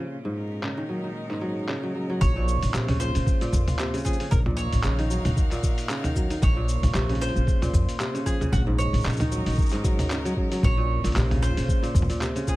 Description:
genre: folktronica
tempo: 114 BPM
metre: 4/4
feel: swing 56% on 16ths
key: Bb minor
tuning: A4 = 439 Hz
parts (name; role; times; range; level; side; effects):
- bright string quartet; sustained chords; 0.0-12.6 s; Bb2 to Gb5; -36 LUFS; right 1 dB; none
- kora; arpeggios; 0.0-12.6 s; Ab2 to Gb3; -29 LUFS; equal; none
- lo-fi sampler-style drum kit; drums; 0.6-12.6 s; cabasa, handclaps, hi-hat, toms; -30 LUFS; equal; low-pass filter on snare, low-pass filter on perc, low-pass filter on hats, low-pass filter on toms
- bowl-back mandolin; melody; 2.2-12.6 s; Gb4 to Db5; -33 LUFS; right 2 dB; vintage 12-bit sampler grit
- upright bass; bass; 2.2-12.1 s; Bb1 to F2; -24 LUFS; equal; none
- electronic kick drum; drums; 2.2-12.6 s; none; -24 LUFS; equal; none
room: little or no reverb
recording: vinyl crackle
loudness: -22 LUFS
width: side -18 dB against mid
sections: 0.0-2.2 A section; 2.2-12.6 B section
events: none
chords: 0.1 Ab7sus4; 2.2 Bbmadd9; 4.3 Ebm7/Bb; 6.4 Bbmadd9; 8.5 Ab7sus4/Bb; 10.6 Bbmadd9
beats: | 0.11 0.63 1.16 1.69 | 2.21 2.74 3.26 3.79 | 4.32 4.84 5.37 5.90 | 6.42 6.95 7.47 8.00 | 8.53 9.05 9.58 10.11 | 10.63 11.16 11.69 12.21

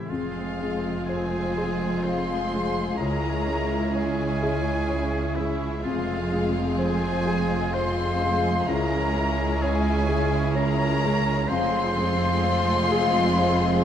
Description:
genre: cinematic, emotional film score for orchestra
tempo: 63 BPM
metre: 3/4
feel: rubato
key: unclear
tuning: A4 = 444 Hz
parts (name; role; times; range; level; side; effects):
- warm symphonic violin section; melody; 0.0-13.8 s; E5 to C6; -32 LUFS; left 2 dB; none
- clear oboe; second line; 0.0-13.8 s; E4 to C5; -33 LUFS; right 1 dB; none
- mellow hollow small flute group; second line; 0.0-13.8 s; Ab4 to F5; -32 LUFS; left 4 dB; none
- felt-muted upright piano; accompaniment; 0.0-13.8 s; C#2 to C#5; -31 LUFS; left 3 dB; none
- rich symphonic viola section; accompaniment; 0.0-13.8 s; Ab3 to C#4; -33 LUFS; equal; none
- clear symphonic violin section; second line; 0.1-13.8 s; E4 to Ab4; -34 LUFS; left 3 dB; none
- mellow French horn section; sustained chords; 0.1-13.8 s; Ab3 to F4; -31 LUFS; left 1 dB; none
- rich symphonic double bass section; bass; 0.1-13.8 s; F1 to C#2; -29 LUFS; right 3 dB; none
- warm symphonic cello section; bass; 0.1-13.8 s; C#2 to F2; -29 LUFS; right 3 dB; none
room: moderate concert hall reverb, RT60 2.4 s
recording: dark, warm production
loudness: -22 LUFS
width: side -9 dB against mid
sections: 0.1-13.8 A section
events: none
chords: 0.1 Fm; 3.0 C#m; 5.8 Fm; 8.7 C#m; 11.5 Fm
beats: | 0.09 1.07 2.03 | 2.99 3.94 4.89 | 5.85 6.79 7.74 | 8.68 9.62 10.56 | 11.50 12.45 13.39

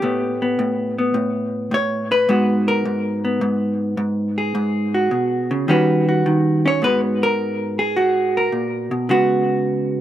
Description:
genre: solo jazz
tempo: 106 BPM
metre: 4/4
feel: swing 69% on 8ths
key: G# minor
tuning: A4 = 441 Hz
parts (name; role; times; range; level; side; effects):
- vintage hollow-body jazz guitar; solo; 0.0-10.0 s; G#2 to C#5; -17 LUFS; equal; slapback echo
room: little or no reverb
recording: recorded outdoors, with no room sound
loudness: -17 LUFS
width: side -12 dB against mid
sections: 0.0-6.8 A section; 6.8-10.0 B section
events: hollow-body jazz guitar solo 0.0-6.8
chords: 0.0 Asus2; 2.3 G#m9; 5.7 D#7alt; 6.8 G#m9; 9.1 C#7sus4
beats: | 0.02 0.58 1.15 1.72 | 2.29 2.85 3.42 3.99 | 4.55 5.12 5.69 6.25 | 6.82 7.39 7.96 8.52 | 9.09 9.66

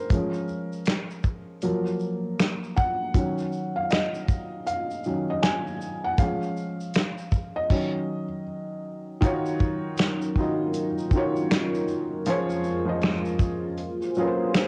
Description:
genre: lo-fi hip hop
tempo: 79 BPM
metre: 4/4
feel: swing 62% on 16ths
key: Eb dorian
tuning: A4 = 440 Hz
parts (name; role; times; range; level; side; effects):
- felt-muted upright piano; accompaniment; 0.0-14.7 s; Eb3 to Ab5; -29 LUFS; equal; cassette tape, low-pass filter
- warm soul drum kit; drums; 0.1-14.7 s; crash cymbal, finger snaps, hi-hat, kick drum, shaker, snare drum; -26 LUFS; equal; vintage 12-bit sampler grit, cassette tape
- dark analog pad; sustained chords; 9.6-14.7 s; F2 to C5; -33 LUFS; equal; chorus, low-pass filter, cassette tape
room: light reverb, small room ambience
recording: home recording on cassette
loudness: -26 LUFS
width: mono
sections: 0.0-9.2 A section; 9.2-14.7 B section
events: felt piano solo 0.0-9.2; stop 7.7-9.2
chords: 0.1 Bbm7/F; 1.6 Gbmaj7; 3.1 Ebm7; 6.2 Db/F; 7.7 Ebm7; 12.3 Bbm7/F; 13.8 Gbmaj9#11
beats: | 0.10 0.86 1.62 2.38 | 3.14 3.90 4.66 5.42 | 6.18 6.94 7.70 8.46 | 9.22 9.98 10.74 11.50 | 12.26 13.02 13.78 14.54

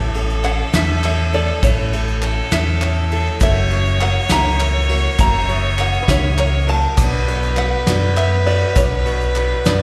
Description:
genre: indie folk with a building arrangement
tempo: 67 BPM (dotted quarters)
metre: 6/8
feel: straight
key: unclear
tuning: A4 = 440 Hz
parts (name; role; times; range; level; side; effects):
- open-back banjo; melody; 0.0-9.8 s; B4 to A#5; -25 LUFS; equal; slapback echo
- rich fiddle; second line; 0.0-9.8 s; A4 to C#5; -25 LUFS; equal; slapback echo
- dark upright piano; accompaniment; 0.0-9.8 s; F#1 to G5; -35 LUFS; equal; none
- picked plugged-in steel-string acoustic guitar; accompaniment; 0.0-9.8 s; F#2 to F#4; -31 LUFS; equal; slapback echo
- ukulele; arpeggios; 0.0-9.8 s; D4 to E5; -31 LUFS; equal; slapback echo
- fingered electric bass; bass; 0.0-9.8 s; F#1 to F#2; -21 LUFS; equal; none
- soft brush drum kit; drums; 0.1-9.8 s; kick drum, ride cymbal, snare drum; -23 LUFS; equal; none
- egg shaker; percussion; 0.1-9.8 s; none; -38 LUFS; equal; none
- group handclap; percussion; 0.1-9.5 s; none; -32 LUFS; equal; none
room: little or no reverb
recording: live gig heard through the venue's PA, recital hall reverb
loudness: -17 LUFS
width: mono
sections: 0.0-9.8 A section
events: none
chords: 0.0 A; 3.4 F#7; 7.0 Bm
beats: 0.74 | 1.63 2.52 | 3.42 4.31 | 5.20 6.09 | 6.98 7.87 | 8.76 9.65

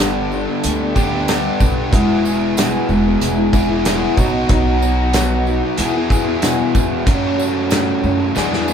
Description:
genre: folk rock and heartland rock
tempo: 93 BPM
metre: 4/4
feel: straight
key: E major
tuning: A4 = 443 Hz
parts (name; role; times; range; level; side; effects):
- picked old ladder-braced acoustic guitar; accompaniment; 0.0-8.7 s; E2 to A4; -21 LUFS; left 4 dB; none
- dark chamber string section; sustained chords; 0.0-8.7 s; A3 to A4; -26 LUFS; equal; none
- overdriven electric guitar; riff; 0.0-8.7 s; E2 to A4; -20 LUFS; right 1 dB; none
- upright bass; bass; 0.0-8.7 s; E1 to F#2; -21 LUFS; right 1 dB; none
- loose indie drum kit; drums; 0.0-8.7 s; hi-hat, kick drum, snare drum; -18 LUFS; equal; none
- tambourine; percussion; 0.3-8.7 s; none; -32 LUFS; right 5 dB; none
room: moderate small room reverb, RT60 0.5 s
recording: band playing live in one room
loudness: -14 LUFS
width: side -8 dB against mid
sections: 0.0-8.7 A section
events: drum fill 8.4-8.7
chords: 0.0 Gadd9; 1.9 E; 4.2 B; 5.8 E; 7.1 F#madd9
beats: 0.00 0.64 1.28 | 1.93 2.57 3.21 3.86 | 4.50 5.14 5.79 6.43 | 7.07 7.71 8.36

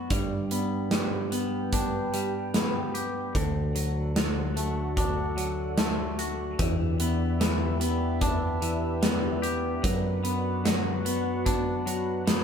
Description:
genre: post-rock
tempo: 74 BPM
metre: 4/4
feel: straight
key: G major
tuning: A4 = 440 Hz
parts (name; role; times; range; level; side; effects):
- twangy electric guitar; arpeggios; 0.0-12.4 s; D3 to G4; -30 LUFS; left 3 dB; none
- fingered electric bass; bass; 0.0-12.4 s; D2 to G2; -31 LUFS; equal; none
- chorused pulse-width pad; sustained chords; 0.1-12.4 s; D4 to G5; -34 LUFS; right 2 dB; none
- big rock drum kit; drums; 0.1-12.4 s; hi-hat, kick drum, snare drum; -29 LUFS; right 1 dB; none
room: light reverb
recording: band playing live in one room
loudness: -25 LUFS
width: side -7 dB against mid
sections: 0.0-12.4 A section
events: none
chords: 0.1 G; 3.4 D; 6.6 Em7; 9.8 Bm/F#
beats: | 0.11 0.92 1.73 2.54 | 3.35 4.16 4.97 5.78 | 6.59 7.41 8.22 9.03 | 9.84 10.65 11.46 12.27

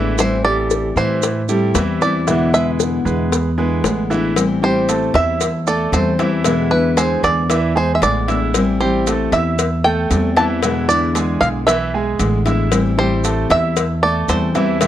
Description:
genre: latin, Cuban son and guajira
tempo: 115 BPM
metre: 4/4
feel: straight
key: A minor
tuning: A4 = 440 Hz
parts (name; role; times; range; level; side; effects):
- bluegrass banjo; melody; 0.0-14.7 s; B4 to A5; -19 LUFS; right 1 dB; none
- fingerpicked steel-string acoustic guitar; accompaniment; 0.0-14.9 s; B2 to E4; -21 LUFS; left 4 dB; none
- bright concert grand piano; arpeggios; 0.0-14.9 s; E3 to E6; -22 LUFS; right 4 dB; none
- upright bass; bass; 0.0-14.9 s; A1 to A2; -20 LUFS; equal; none
- bongos and cowbell; percussion; 0.2-14.9 s; none; -23 LUFS; left 8 dB; none
- maracas; percussion; 0.2-14.9 s; none; -28 LUFS; right 15 dB; none
room: light reverb, studio reverb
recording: dry, close 1970s-style studio recording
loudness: -14 LUFS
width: side -11 dB against mid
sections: 0.0-4.4 A section; 4.4-14.9 B section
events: five-string banjo solo 0.0-4.4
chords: 0.2 Am7; 2.3 E7; 4.4 Am7; 6.5 E7; 8.5 Am7; 10.6 E7; 12.7 Am7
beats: | 0.19 0.71 1.23 1.75 | 2.27 2.80 3.32 3.84 | 4.36 4.89 5.41 5.93 | 6.45 6.98 7.50 8.02 | 8.54 9.07 9.59 10.11 | 10.63 11.16 11.68 12.20 | 12.72 13.25 13.77 14.29 | 14.81

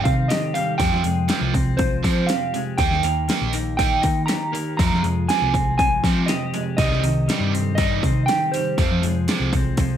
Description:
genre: indie rock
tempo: 120 BPM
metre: 4/4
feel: straight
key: unclear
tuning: A4 = 440 Hz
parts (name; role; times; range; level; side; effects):
- mellow electric guitar; melody; 0.0-10.0 s; C5 to Bb5; -24 LUFS; right 2 dB; lush chorus, slapback echo
- biting overdriven guitar; riff; 0.0-10.0 s; F2 to Eb4; -26 LUFS; right 7 dB; wide subtle chorus, slapback echo
- twelve-string electric guitar; riff; 0.0-10.0 s; C3 to G4; -28 LUFS; left 8 dB; warbly pitch drift
- hollow-body short-scale picked electric bass; bass; 0.1-10.0 s; Bb1 to F3; -23 LUFS; left 1 dB; none
- pop drum kit; drums; 0.1-9.9 s; hi-hat, kick drum, snare drum; -24 LUFS; equal; overdrive
room: little or no reverb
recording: none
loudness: -18 LUFS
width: side -10 dB against mid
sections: 0.0-10.0 A section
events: drum fill 9.8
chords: 0.0 Cm; 0.8 Fmadd9; 2.8 Eb; 4.8 Fmadd9; 6.8 Cm; 8.8 Fm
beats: 0.31 | 0.81 1.30 1.80 2.30 | 2.80 3.29 3.79 4.29 | 4.79 5.29 5.79 6.29 | 6.79 7.29 7.79 8.29 | 8.79 9.29 9.79

